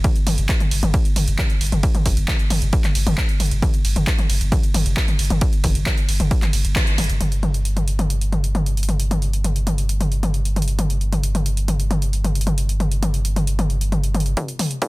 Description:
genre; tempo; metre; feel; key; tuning
driving peak-time techno; 134 BPM; 4/4; straight; unclear; A4 = 440 Hz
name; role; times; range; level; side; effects
saturated sub bass; bass; 0.0-14.3 s; G1; -20 LUFS; equal; tube saturation, sidechain pumping, low-pass filter
electronic kick drum; drums; 0.0-6.8, 14.4-14.9 s; none; -19 LUFS; equal; overdrive, high-pass filter on kick
punchy analog drum machine; drums; 0.0-14.9 s; handclaps, hi-hat, ride cymbal, toms; -23 LUFS; left 1 dB; overdrive
room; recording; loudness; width
little or no reverb; dense, heavily limited modern master; -17 LUFS; side -21 dB against mid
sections
0.0-7.2 A section; 7.2-14.4 B section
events
drop 0.0-7.2; band accent 6.8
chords
none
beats
| 0.04 0.49 0.94 1.39 | 1.83 2.28 2.73 3.18 | 3.62 4.07 4.52 4.97 | 5.42 5.86 6.31 6.76 | 7.21 7.65 8.10 8.55 | 9.00 9.45 9.89 10.34 | 10.79 11.24 11.68 12.13 | 12.58 13.03 13.47 13.92 | 14.37 14.82

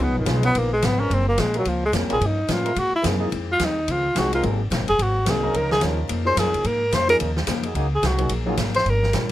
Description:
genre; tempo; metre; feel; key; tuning
jazz, big band swing; 217 BPM; 4/4; swing 59% on 8ths; Db major; A4 = 444 Hz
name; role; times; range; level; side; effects
breathy tenor saxophone; melody; 0.0-9.2 s; Eb3 to C5; -21 LUFS; equal; none
clear baby grand piano; accompaniment; 0.0-9.3 s; E3 to Bb4; -28 LUFS; equal; none
picked steel-string acoustic guitar; accompaniment; 0.0-9.3 s; F2 to Ab4; -31 LUFS; left 6 dB; none
upright bass; bass; 0.0-9.3 s; Gb1 to A2; -24 LUFS; equal; none
swinging big-band drum kit; drums; 0.0-9.3 s; hi-hat, kick drum, ride cymbal, snare drum; -28 LUFS; equal; none
clear trombone section; sustained chords; 0.4-8.5 s; F3 to Cb5; -29 LUFS; right 1 dB; none
room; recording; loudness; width
little or no reverb; none; -19 LUFS; side -14 dB against mid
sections
0.0-7.8 A section; 7.8-9.3 A section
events
tenor saxophone solo 0.0-9.3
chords
0.0 Db9; 1.1 Gbmaj9#11; 2.2 Gm7b5; 2.8 C7alt; 3.3 Fm7; 4.4 Ab9; 5.5 Db69; 7.8 Gb69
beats
| 0.00 0.28 0.55 0.83 | 1.11 1.39 1.66 1.94 | 2.22 2.50 2.77 3.05 | 3.33 3.60 3.88 4.16 | 4.43 4.71 4.99 5.26 | 5.54 5.82 6.09 6.37 | 6.65 6.92 7.20 7.48 | 7.75 8.03 8.31 8.58 | 8.86 9.14

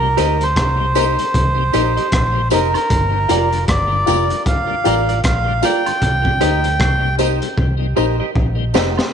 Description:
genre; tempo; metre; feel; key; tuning
roots reggae; 77 BPM; 4/4; swing 60% on 16ths; unclear; A4 = 438 Hz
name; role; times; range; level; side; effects
melodica; melody; 0.0-7.2 s; Bb4 to G5; -19 LUFS; right 2 dB; tape echo
tonewheel organ; accompaniment; 0.0-9.0 s; G2 to F4; -27 LUFS; left 9 dB; slow rotary speaker, tape echo
vintage muted fingered electric bass; bass; 0.0-9.0 s; F1 to D2; -19 LUFS; equal; none
clean electric guitar; accompaniment; 0.2-8.9 s; F4 to Eb5; -23 LUFS; right 11 dB; tape echo
warm upright piano; stabs; 0.2-9.0 s; Eb4 to C5; -23 LUFS; left 10 dB; none
crunchy breakbeat drum kit; drums; 0.2-9.1 s; hi-hat, kick drum, rim click, snare drum; -21 LUFS; equal; none
tambourine and woodblock; percussion; 0.2-9.1 s; none; -31 LUFS; right 12 dB; none
room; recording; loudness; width
light reverb, studio reverb; 1960s-style stereo with parts hard left and right, nothing above 10.5 kHz; -14 LUFS; side -7 dB against mid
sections
0.0-9.1 A section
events
drum fill 7.6-9.1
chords
0.0 Cm7; 2.9 Gm7; 6.0 Cm7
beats
0.56 1.34 2.12 | 2.90 3.68 4.46 5.24 | 6.02 6.79 7.57 8.35

